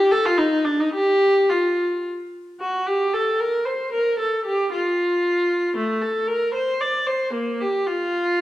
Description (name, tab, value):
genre	classical, baroque-style suite movement for unaccompanied viola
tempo	105-118 BPM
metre	3/4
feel	rubato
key	unclear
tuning	A4 = 443 Hz
part	rich viola	solo	0.0-8.4 s	A3 to D5	-19 LUFS	equal	none
room	wet recital hall reverb, RT60 1.4 s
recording	dark, warm production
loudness	-19 LUFS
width	side -14 dB against mid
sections	0.0-2.6 A section; 2.6-8.4 B section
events	none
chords	none